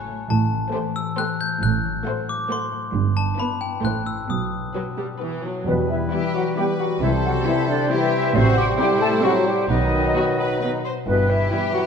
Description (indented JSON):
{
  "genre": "cinematic, playful, whimsical film cue",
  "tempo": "134 BPM",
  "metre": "3/4",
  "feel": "straight",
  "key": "E minor",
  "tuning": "A4 = 440 Hz",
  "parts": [
    { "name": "glockenspiel with brass mallets", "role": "melody", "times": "0.0-5.2 s", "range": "G5 to G6", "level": "-27 LUFS", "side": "left 4 dB", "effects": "none" },
    { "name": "concert harp", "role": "arpeggios", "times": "0.0-11.9 s", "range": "G2 to G5", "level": "-28 LUFS", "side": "left 7 dB", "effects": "none" },
    { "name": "clear studio double bass section", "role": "bass", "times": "0.3-11.4 s", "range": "E1 to C2", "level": "-25 LUFS", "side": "right 5 dB", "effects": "none" },
    { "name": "rich symphonic cello section", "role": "bass", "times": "0.3-11.4 s", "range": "E2 to C3", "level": "-26 LUFS", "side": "right 5 dB", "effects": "none" },
    { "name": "rich studio violin section", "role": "melody", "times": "0.7-11.9 s", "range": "E4 to C5", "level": "-33 LUFS", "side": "left 4 dB", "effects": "none" },
    { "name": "rich studio violin section", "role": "second line", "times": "0.7-11.9 s", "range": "B3 to B4", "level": "-30 LUFS", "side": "left 3 dB", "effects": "none" },
    { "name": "clear studio viola section", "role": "accompaniment", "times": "0.7-11.9 s", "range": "E3 to C4", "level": "-30 LUFS", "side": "right 3 dB", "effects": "none" },
    { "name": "clear clarinet", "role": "second line", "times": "5.7-11.8 s", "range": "B3 to A4", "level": "-28 LUFS", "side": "left 1 dB", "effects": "none" },
    { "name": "flute section", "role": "second line", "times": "5.7-11.8 s", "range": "B4 to A5", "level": "-25 LUFS", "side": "left 2 dB", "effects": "none" },
    { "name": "warm oboe", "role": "second line", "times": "5.7-11.9 s", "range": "B4 to C5", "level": "-30 LUFS", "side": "equal", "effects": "none" },
    { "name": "warm bassoon", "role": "accompaniment", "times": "5.7-11.9 s", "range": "E3 to G3", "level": "-27 LUFS", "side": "right 3 dB", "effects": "none" },
    { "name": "warm French horn section", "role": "sustained chords", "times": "5.7-11.8 s", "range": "B2 to A3", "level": "-26 LUFS", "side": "left 2 dB", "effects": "none" }
  ],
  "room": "moderate scoring stage reverb, RT60 1.6 s",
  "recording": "dark, warm production",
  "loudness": "-19 LUFS",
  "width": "side -6 dB against mid",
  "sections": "0.0-5.7 A section; 5.7-11.9 B section",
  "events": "none",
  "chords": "0.3 Am7; 1.6 F#dim/A; 2.9 Em/G; 3.8 Am; 4.3 B; 5.7 Em; 7.0 C; 8.4 Am7; 9.7 B; 11.1 Em/G",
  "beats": "| 0.30 0.74 1.19 | 1.63 2.07 2.50 | 2.94 3.39 3.84 | 4.30 4.76 5.22 | 5.68 6.13 6.57 | 7.02 7.47 7.91 | 8.36 8.80 9.24 | 9.70 10.16 10.62 | 11.07 11.52"
}